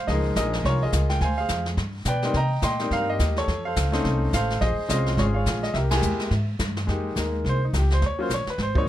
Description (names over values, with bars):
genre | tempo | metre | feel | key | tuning
jazz piano trio | 212 BPM | 4/4 | swing 60% on 8ths | F minor | A4 = 440 Hz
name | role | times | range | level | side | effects
clear concert grand piano | melody | 0.0-8.9 s | F3 to C6 | -26 LUFS | equal | none
upright bass | bass | 0.1-8.9 s | Ab1 to C3 | -24 LUFS | equal | none
jazz brush drum kit | drums | 0.1-8.9 s | brushed snare drum, hi-hat, kick drum, ride cymbal, snare drum | -29 LUFS | equal | none
room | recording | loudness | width
little or no reverb | rough home demo mix | -21 LUFS | side -12 dB against mid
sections
0.0-6.9 A section; 6.9-8.9 B section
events
band accent 5.9; grand piano solo 6.9-8.9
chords
0.1 Db69; 1.2 Dm7b5; 1.8 G; 2.3 Cm7; 3.5 F7b13; 4.6 Bbm9; 5.7 C7b13; 6.9 Fm11; 8.0 Eb7(no3)